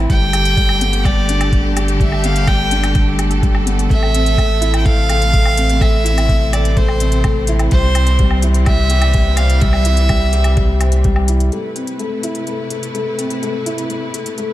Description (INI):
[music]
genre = piano and strings electronica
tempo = 126 BPM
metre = 4/4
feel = straight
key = A minor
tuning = A4 = 437 Hz
[part]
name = rich studio string section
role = sustained chords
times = 0.0-14.5 s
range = C3 to B4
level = -25 LUFS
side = equal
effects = none
[part]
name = felt-muted upright piano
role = riff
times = 0.0-14.5 s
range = G3 to C5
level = -21 LUFS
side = left 2 dB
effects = low-pass filter, diffuse ambient delay
[part]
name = round analog bass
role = bass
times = 0.0-11.5 s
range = G1 to C2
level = -16 LUFS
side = equal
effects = sidechain pumping
[part]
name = warm violin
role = melody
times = 0.1-11.0 s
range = C5 to G5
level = -20 LUFS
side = right 2 dB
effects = diffuse ambient delay
[part]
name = electronic hi-hat and woodblock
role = drums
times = 0.1-14.5 s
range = none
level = -26 LUFS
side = left 1 dB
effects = none
[part]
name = electronic kick drum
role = drums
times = 0.1-11.1 s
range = none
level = -15 LUFS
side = equal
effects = none
[sound]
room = light reverb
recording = none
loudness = -13 LUFS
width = side -14 dB against mid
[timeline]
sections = 0.0-11.5 A section; 11.5-14.5 B section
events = drop 0.0-11.5; filter sweep on felt piano 11.5-14.5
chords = 0.1 Gadd9; 3.9 Am; 7.7 C; 11.5 Amadd9